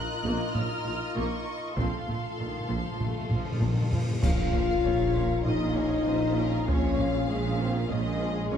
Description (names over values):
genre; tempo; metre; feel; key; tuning
cinematic, epic orchestral film score; 98 BPM; 4/4; straight; Bb minor; A4 = 439 Hz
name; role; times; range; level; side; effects
warm symphonic violin section; melody; 0.0-8.6 s; Ab4 to Gb6; -39 LUFS; left 2 dB; none
warm symphonic violin section; second line; 0.0-8.6 s; A4 to F5; -37 LUFS; equal; none
dark symphonic viola section; accompaniment; 0.0-8.6 s; Eb3 to F4; -37 LUFS; right 1 dB; none
mellow French horn section; sustained chords; 0.0-8.6 s; Ab3 to F4; -31 LUFS; left 6 dB; none
mellow tuba; bass; 0.0-8.6 s; Bb1; -35 LUFS; right 4 dB; none
timpani; percussion; 0.0-5.1 s; Bb2; -33 LUFS; left 1 dB; none
rich symphonic double bass section; bass; 0.2-8.6 s; Bb1; -35 LUFS; right 2 dB; none
warm symphonic cello section; bass; 0.2-8.6 s; Bb2; -36 LUFS; right 2 dB; none
taiko ensemble; drums; 0.6-8.2 s; none; -31 LUFS; equal; none
cymbal swell and sub drop; sound effects; 3.2-6.7 s; none; -40 LUFS; equal; none
warm symphonic string section; sustained chords; 4.2-8.6 s; Db4 to F5; -38 LUFS; right 1 dB; none
clash cymbals and concert bass drum; percussion; 4.2-5.4 s; none; -34 LUFS; equal; none
room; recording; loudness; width
moderate recital hall reverb, RT60 1.5 s; dark, warm production; -25 LUFS; side -8 dB against mid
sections
0.0-4.2 A section; 4.2-8.6 A section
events
timpani fill 1.8-4.2; cymbal swell 3.2-4.2; drum fill 3.3-4.2; band accent 4.2-4.8; impact 4.2-6.7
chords
0.0 Ebmadd9/Bb; 1.8 F/Bb; 4.2 Bbm; 6.7 Db/Bb